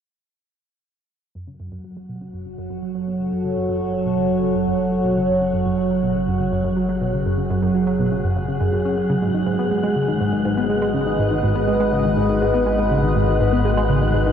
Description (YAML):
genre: ambient, sequencer-driven space music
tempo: 122 BPM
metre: 4/4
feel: straight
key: F# dorian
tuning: A4 = 439 Hz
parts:
  - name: evolving wavetable pad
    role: sustained chords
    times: 1.9-14.3 s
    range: F#3 to D#5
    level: -20 LUFS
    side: equal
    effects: chorus, built-in reverb, phaser
  - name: tight sequenced synth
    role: riff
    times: 1.4-14.3 s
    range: F#2 to C#4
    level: -23 LUFS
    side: equal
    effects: chorus, ping-pong delay
  - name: analog drone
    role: bass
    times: 2.8-14.3 s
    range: F#1 to G#1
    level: -28 LUFS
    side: equal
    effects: chorus
  - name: wind-like tuned noise texture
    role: texture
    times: 2.5-14.3 s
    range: F#4 to F#5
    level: -31 LUFS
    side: left 1 dB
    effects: built-in reverb
room: wet cathedral reverb, RT60 6.2 s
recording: in a vast, echoing space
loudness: -18 LUFS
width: side -8 dB against mid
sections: 1.4-14.3 A section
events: fade-in on synth arpeggio sound 1.4-14.3; fade-in on synth drone 1.4-14.3; fade-in on synth texture 1.4-14.3; filter sweep on ambient pad 1.4-14.3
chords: 1.4 F#m; 9.2 G#m